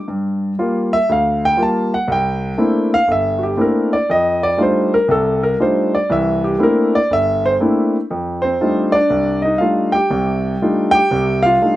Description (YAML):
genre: solo jazz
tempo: 120 BPM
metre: 4/4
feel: swing 66% on 8ths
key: F major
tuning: A4 = 440 Hz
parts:
  - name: warm grand piano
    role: solo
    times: 0.0-11.8 s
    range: G1 to A5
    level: -14 LUFS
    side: equal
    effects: none
room: light reverb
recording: none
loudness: -14 LUFS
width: side -15 dB against mid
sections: 0.0-8.1 A section; 8.1-11.8 B section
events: grand piano solo 0.0-8.1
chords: 0.1 Gm7; 2.1 C13; 4.1 F13; 6.1 C13; 8.1 F13